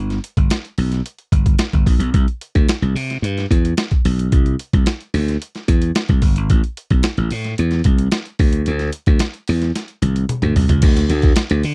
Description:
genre	polished 1980s jazz-funk pop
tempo	110 BPM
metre	4/4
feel	straight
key	unclear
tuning	A4 = 443 Hz
part	slap bass	bass	0.0-11.7 s	G1 to D3	-17 LUFS	equal	none
part	boom bap sampler-style drum kit	drums	0.1-11.7 s	crash cymbal, hi-hat, kick drum, snare drum, toms	-16 LUFS	equal	none
room	little or no reverb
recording	dry, close 1970s-style studio recording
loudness	-15 LUFS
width	side -33 dB against mid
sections	0.0-10.8 A section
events	drum fill 9.7-10.8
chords	none

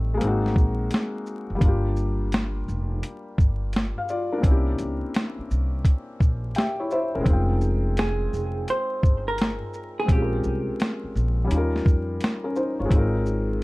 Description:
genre	lo-fi hip hop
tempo	85 BPM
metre	4/4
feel	swing 65% on 16ths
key	unclear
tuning	A4 = 441 Hz
part	felt-muted upright piano	accompaniment	0.0-13.6 s	G3 to G5	-28 LUFS	left 2 dB	cassette tape, low-pass filter
part	upright bass	bass	0.0-13.6 s	E1 to F2	-25 LUFS	equal	none
part	boom bap sampler-style drum kit	drums	0.2-13.5 s	hi-hat, kick drum, shaker, snare drum	-20 LUFS	equal	none
part	vintage hollow-body jazz guitar	melody	8.0-11.1 s	G4 to C5	-28 LUFS	right 2 dB	low-pass filter
room	light reverb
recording	dark, warm production, vinyl crackle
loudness	-22 LUFS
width	side -22 dB against mid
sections	0.0-13.6 A section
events	felt piano fill 6.2-7.3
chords	0.2 Ab9; 1.6 Gm7; 4.4 C7b9; 7.3 Fm9; 10.1 Bbm9; 11.5 Eb7; 12.9 Ab69

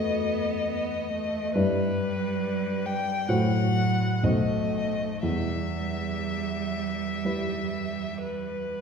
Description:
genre	classical, slow romantic movement for piano trio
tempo	58-71 BPM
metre	4/4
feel	rubato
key	E minor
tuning	A4 = 439 Hz
part	dark violin	melody	0.0-8.8 s	B4 to G5	-31 LUFS	left 4 dB	none
part	rich cello	second line	0.0-8.8 s	F#3 to B3	-32 LUFS	right 7 dB	none
part	warm baby grand piano	accompaniment	0.0-8.8 s	B1 to C5	-28 LUFS	left 1 dB	none
room	wet scoring stage reverb, RT60 1.5 s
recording	heard from further back in the room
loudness	-25 LUFS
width	side -6 dB against mid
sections	0.0-8.8 A section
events	none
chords	0.0 B7/E; 1.6 Em/G; 3.3 F#dim/A; 4.2 B7b9; 5.2 Em

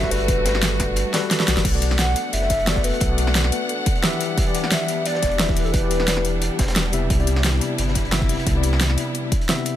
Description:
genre	liquid drum and bass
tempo	176 BPM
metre	4/4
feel	swing 53% on 16ths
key	unclear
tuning	A4 = 440 Hz
part	hollow clarinet-like synth lead	melody	0.0-6.6 s	A4 to F#5	-27 LUFS	equal	chorus, digital delay
part	bright tine electric piano	accompaniment	0.0-9.8 s	C3 to E5	-26 LUFS	left 2 dB	medium stereo tremolo, tape echo
part	rich studio string section	sustained chords	0.0-9.8 s	G3 to F#5	-29 LUFS	left 1 dB	none
part	warm sub bass	bass	0.0-9.0 s	E1 to C2	-23 LUFS	equal	none
part	crunchy breakbeat drum kit	drums	0.0-9.7 s	hi-hat, snare drum	-31 LUFS	equal	high-pass filter on hats, high-pass filter on snare, high-pass filter on room
part	electronic kick drum	drums	0.0-9.4 s	none	-23 LUFS	equal	none
part	pop drum kit	drums	0.0-9.7 s	crash cymbal, hi-hat, snare drum	-24 LUFS	equal	none
room	small room reverb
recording	none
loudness	-18 LUFS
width	side -12 dB against mid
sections	0.0-1.6 A section; 1.6-9.8 A section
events	drop 0.0-1.6, 1.6-9.8; kick drops out 1.0-1.6; drum fill 1.1-1.6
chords	0.0 Gmaj9; 1.6 Bm7; 4.2 Em7; 7.1 Cmaj9

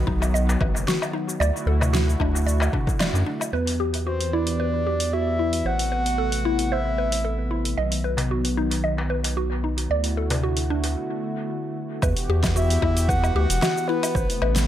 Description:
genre	organic downtempo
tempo	113 BPM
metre	4/4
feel	swing 53% on 16ths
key	E minor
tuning	A4 = 440 Hz
part	warm analog pad	sustained chords	0.0-14.7 s	C3 to G4	-30 LUFS	equal	chorus, tremolo, sidechain pumping
part	mallet-like synth pluck	arpeggios	0.0-14.5 s	D4 to D#5	-28 LUFS	equal	chorus, phaser, analog delay
part	round analog bass	bass	0.0-14.7 s	E1 to F#2	-24 LUFS	equal	tube saturation, sidechain pumping
part	bronze singing bowl	texture	0.0-11.0 s	F#3 to B4	-36 LUFS	right 2 dB	none
part	electronic kick drum	drums	0.1-3.0, 12.0-14.3 s	none	-26 LUFS	equal	overdrive
part	deep house drum kit	drums	0.2-14.7 s	hi-hat, shaker, snare drum, woodblock	-28 LUFS	equal	overdrive, dub echo
part	darbuka	percussion	0.2-3.5, 8.2-10.9 s	none	-33 LUFS	left 2 dB	dub echo
part	breathy flute-like synth lead	melody	4.1-7.5, 12.6-14.7 s	B4 to F#5	-27 LUFS	left 1 dB	chorus, vintage 12-bit sampler grit, analog delay
room	moderate spring reverb, RT60 1.3 s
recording	echo-heavy mix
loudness	-21 LUFS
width	side -11 dB against mid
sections	0.0-3.5 A section; 3.5-12.0 B section; 12.0-14.7 C section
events	band accent 3.0; filter sweep on analog synth pad 3.5-12.0; break 11.0-12.0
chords	0.0 B; 1.4 D; 3.5 Emadd9; 5.7 Amadd9; 7.8 B; 9.9 D; 12.0 Emadd9; 14.1 Amadd9

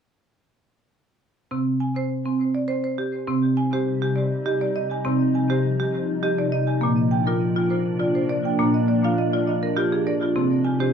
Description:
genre	world meditative, meditative tuned percussion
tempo	102 BPM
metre	3/4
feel	swing 53% on 16ths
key	C minor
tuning	A4 = 440 Hz
part	marimba with medium hard mallets	arpeggios	1.5-10.9 s	Bb2 to Ab5	-21 LUFS	right 1 dB	diffuse ambient delay
part	glassy FM pad	sustained chords	3.7-10.9 s	C3 to Eb4	-24 LUFS	left 2 dB	ensemble chorus, built-in reverb
room	wet studio reverb, RT60 0.5 s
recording	dark, warm production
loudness	-20 LUFS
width	side -7 dB against mid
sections	1.5-3.3 A section; 3.3-10.9 B section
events	marimba fill 8.7-10.4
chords	1.5 C5; 3.3 Cm; 6.8 Bb; 10.4 Cm

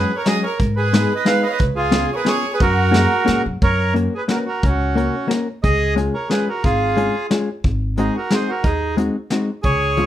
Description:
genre	musette waltz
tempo	179 BPM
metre	3/4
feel	swing 53% on 8ths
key	F# major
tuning	A4 = 440 Hz
part	accordion	melody	0.0-10.1 s	C#4 to E#5	-20 LUFS	right 2 dB	none
part	bright violin	second line	0.0-3.4 s	E#4 to C#5	-26 LUFS	right 6 dB	none
part	hollow-body jazz guitar	accompaniment	0.0-10.1 s	E#3 to A#4	-20 LUFS	left 3 dB	none
part	upright bass	bass	0.0-10.1 s	G#1 to G#2	-21 LUFS	equal	none
part	vintage brush drum kit	drums	0.3-10.1 s	hi-hat, kick drum, snare drum	-21 LUFS	equal	none
room	moderate studio reverb, RT60 0.5 s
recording	none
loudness	-16 LUFS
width	side -12 dB against mid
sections	0.0-3.6 A section; 3.6-10.1 B section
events	none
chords	0.0 F#sus2; 0.6 G#m; 1.6 C#7; 2.6 F#add9; 3.6 F#; 5.6 C#; 7.6 G#7

